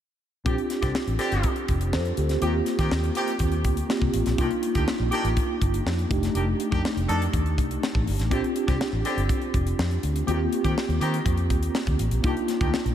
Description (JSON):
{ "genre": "polished 1980s jazz-funk pop", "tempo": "122 BPM", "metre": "4/4", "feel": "straight", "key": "Bb major", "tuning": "A4 = 440 Hz", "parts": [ { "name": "mellow tine electric piano", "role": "accompaniment", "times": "0.4-12.9 s", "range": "A3 to C5", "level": "-27 LUFS", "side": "equal", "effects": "medium stereo tremolo, wide subtle chorus" }, { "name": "warm horn section", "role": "second line", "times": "0.5-12.7 s", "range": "D3 to A4", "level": "-32 LUFS", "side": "equal", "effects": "none" }, { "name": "vintage muted fingered electric bass", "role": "bass", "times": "0.5-12.9 s", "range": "F1 to Eb3", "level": "-26 LUFS", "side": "equal", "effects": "none" }, { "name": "tight funk drum kit", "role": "drums", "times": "0.5-12.9 s", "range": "hi-hat, kick drum, snare drum", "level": "-28 LUFS", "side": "equal", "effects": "none" } ], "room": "moderate cathedral reverb, RT60 4.6 s", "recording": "dreamy mix soaked in reverb", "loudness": "-22 LUFS", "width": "side -10 dB against mid", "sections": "0.5-12.9 A section", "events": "none", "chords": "0.5 Bb69 (rootless); 2.4 Eb6; 4.4 Cm11 (rootless); 6.1 F13; 8.3 Bb69 (rootless); 10.3 Eb6; 12.2 Cm11", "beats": "| 0.46 0.95 1.44 1.93 | 2.42 2.91 3.40 3.90 | 4.39 4.88 5.37 5.86 | 6.35 6.84 7.33 7.83 | 8.31 8.81 9.30 9.79 | 10.28 10.77 11.26 11.75 | 12.24 12.73" }